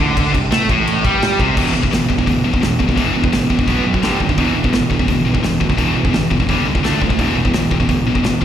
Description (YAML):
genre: heavy metal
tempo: 171 BPM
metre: 4/4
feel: straight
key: E minor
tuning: A4 = 440 Hz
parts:
  - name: heavy high-gain guitar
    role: riff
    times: 0.0-8.4 s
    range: E2 to D4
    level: -18 LUFS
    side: left 7 dB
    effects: distortion, slapback echo
  - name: sludgy distorted guitar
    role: riff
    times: 0.0-8.4 s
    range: E2 to D4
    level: -19 LUFS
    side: right 8 dB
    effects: overdrive, slapback echo
  - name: fuzz fingered electric bass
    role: bass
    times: 0.0-8.4 s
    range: E1 to A2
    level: -22 LUFS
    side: left 1 dB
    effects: overdrive
  - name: big rock drum kit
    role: drums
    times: 0.2-8.4 s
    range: crash cymbal, hi-hat, kick drum, snare drum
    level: -19 LUFS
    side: equal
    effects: none
room: small room ambience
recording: live gig heard through the venue's PA, recital hall reverb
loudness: -13 LUFS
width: side -10 dB against mid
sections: 0.0-1.6 A section; 1.6-8.4 B section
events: none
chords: 0.0 C5; 1.6 E5; 3.7 B5; 4.0 G5; 4.4 E5; 6.5 G5; 6.8 D5; 7.2 E5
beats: | 0.16 0.52 0.87 1.22 | 1.57 1.92 2.27 2.62 | 2.98 3.33 3.68 4.03 | 4.38 4.73 5.08 5.43 | 5.78 6.14 6.49 6.84 | 7.19 7.54 7.89 8.24